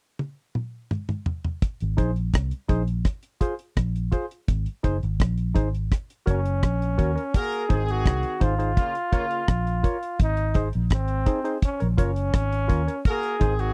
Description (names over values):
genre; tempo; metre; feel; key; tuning
roots reggae; 84 BPM; 4/4; straight; Ab mixolydian; A4 = 442 Hz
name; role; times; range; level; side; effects
deep reggae drum kit; drums; 0.2-13.7 s; hi-hat, kick drum, rim click, toms; -25 LUFS; equal; none
vintage muted fingered electric bass; bass; 1.8-13.7 s; Gb1 to Eb2; -27 LUFS; equal; none
percussive organ stab; stabs; 2.0-13.5 s; Eb4 to Db5; -31 LUFS; equal; chorus
clear trombone; melody; 6.3-13.7 s; C4 to Ab4; -31 LUFS; equal; none
clear horn section; second line; 7.3-13.7 s; Db3 to Bb4; -34 LUFS; equal; none
room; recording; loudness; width
little or no reverb; dry, close 1970s-style studio recording; -25 LUFS; mono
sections
0.0-1.6 A section; 1.6-7.3 B section; 7.3-13.7 C section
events
drum fill 0.2-1.6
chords
0.0 N.C.; 1.6 Ab; 3.1 Fm; 4.5 Ab; 5.9 Gb; 7.3 Ab; 8.8 Bbm; 10.2 Ab; 11.6 Bbm; 13.1 Ab